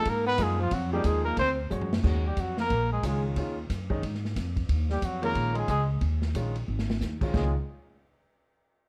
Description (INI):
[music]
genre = jazz, small-group swing and bop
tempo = 181 BPM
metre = 4/4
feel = swing 62% on 8ths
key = Db major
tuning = A4 = 440 Hz
[part]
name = breathy trumpet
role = melody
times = 0.0-7.5 s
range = F4 to C5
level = -32 LUFS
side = equal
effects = none
[part]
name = breathy tenor saxophone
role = second line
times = 0.0-7.5 s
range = F3 to C4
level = -36 LUFS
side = equal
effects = none
[part]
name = bright upright piano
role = accompaniment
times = 0.0-7.5 s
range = Eb3 to Db5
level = -36 LUFS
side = equal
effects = none
[part]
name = upright bass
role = bass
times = 0.0-7.5 s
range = Ab1 to Ab2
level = -31 LUFS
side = equal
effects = none
[part]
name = open jazz drum kit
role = drums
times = 0.1-7.4 s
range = crash cymbal, hi-hat, kick drum, ride cymbal, snare drum, toms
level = -37 LUFS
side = equal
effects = none
[sound]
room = light reverb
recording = dark, warm production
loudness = -28 LUFS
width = mono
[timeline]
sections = 0.0-2.0 A section; 2.0-7.3 B section; 7.3-8.7 C section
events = drum fill 1.7-2.0, 6.7-7.0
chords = 0.0 Abm13; 0.7 Gbmaj13; 1.4 D7#11; 2.0 Ebm9; 2.7 Bb7sus4; 3.4 Ebm9; 4.0 Fm; 4.7 Ebsus2; 5.4 Bb7sus4; 6.7 Absus4; 7.3 Db